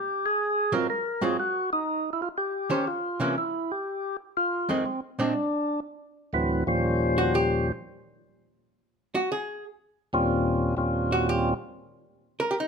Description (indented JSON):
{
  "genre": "jazz",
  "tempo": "121 BPM",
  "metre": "4/4",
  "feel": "swing 69% on 8ths",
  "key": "Eb mixolydian",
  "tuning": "A4 = 441 Hz",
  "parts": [
    { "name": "percussive tonewheel organ", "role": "melody", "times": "0.0-11.5 s", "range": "D2 to C5", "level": "-25 LUFS", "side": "equal", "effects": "slow rotary speaker, plate reverb" },
    { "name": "archtop guitar, miked and amplified", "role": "accompaniment", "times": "0.7-12.7 s", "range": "F2 to C5", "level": "-27 LUFS", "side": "right 2 dB", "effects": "none" }
  ],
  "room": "moderate large studio reverb, RT60 0.9 s",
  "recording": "close, detailed microphones",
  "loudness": "-24 LUFS",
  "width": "side -5 dB against mid",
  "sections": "0.0-6.3 A section; 6.3-12.7 B section",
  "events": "hollow-body jazz guitar solo 6.3-12.7",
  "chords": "0.4 Ab6; 2.4 Eb6; 3.4 N.C.; 4.3 Fm7; 5.3 N.C.; 6.3 Eb13; 8.3 N.C.; 10.3 Eb13"
}